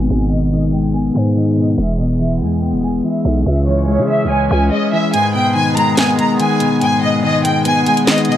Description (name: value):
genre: hip hop, drill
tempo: 143 BPM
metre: 4/4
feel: half-time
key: G# minor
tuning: A4 = 440 Hz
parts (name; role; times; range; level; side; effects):
- warm studio violin section; melody; 0.0-8.4 s; C#5 to A#5; -19 LUFS; equal; tape echo
- mellow electric guitar; accompaniment; 0.0-8.4 s; E2 to C#5; -16 LUFS; left 2 dB; none
- accordion; sustained chords; 0.0-8.4 s; D#3 to G#4; -25 LUFS; right 1 dB; none
- growling 808-style bass; bass; 0.0-4.7 s; E1 to C#3; -17 LUFS; right 1 dB; none
- drill drum kit; drums; 5.1-8.4 s; finger snaps, hi-hat, snare drum; -17 LUFS; right 1 dB; none
room: light reverb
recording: dry, gritty hardware recording, low-pass filter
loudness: -13 LUFS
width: side -11 dB against mid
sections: 0.0-5.1 A section; 5.1-8.4 B section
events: filter sweep 0.0-5.1; kick muted 5.1-8.4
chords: 0.0 G#m; 1.8 E; 3.5 C#m; 5.1 G#m